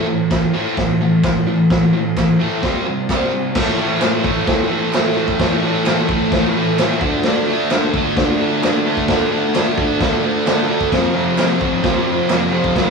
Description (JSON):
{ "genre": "garage rock duo or trio", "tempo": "130 BPM", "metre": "4/4", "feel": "straight", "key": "A minor", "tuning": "A4 = 442 Hz", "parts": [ { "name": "overdriven combo organ", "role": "sustained chords", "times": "0.0-12.9 s", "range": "C4 to F5", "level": "-29 LUFS", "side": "equal", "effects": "none" }, { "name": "fuzz guitar", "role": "riff", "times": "0.0-12.9 s", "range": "F2 to D4", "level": "-16 LUFS", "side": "equal", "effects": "distortion" }, { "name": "vintage drum kit", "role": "drums", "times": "0.3-12.9 s", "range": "crash cymbal, kick drum, snare drum", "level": "-20 LUFS", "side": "equal", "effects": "none" }, { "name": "group handclap", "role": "percussion", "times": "0.3-12.4 s", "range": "none", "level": "-27 LUFS", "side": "right 5 dB", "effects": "none" } ], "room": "moderate studio reverb, RT60 0.6 s", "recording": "band playing live in one room, studio ambience", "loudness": "-14 LUFS", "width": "side -4 dB against mid", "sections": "0.0-3.6 A section; 3.6-12.9 B section", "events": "none", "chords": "0.0 Am; 2.6 C5; 3.6 Am; 7.0 Dm; 10.9 F" }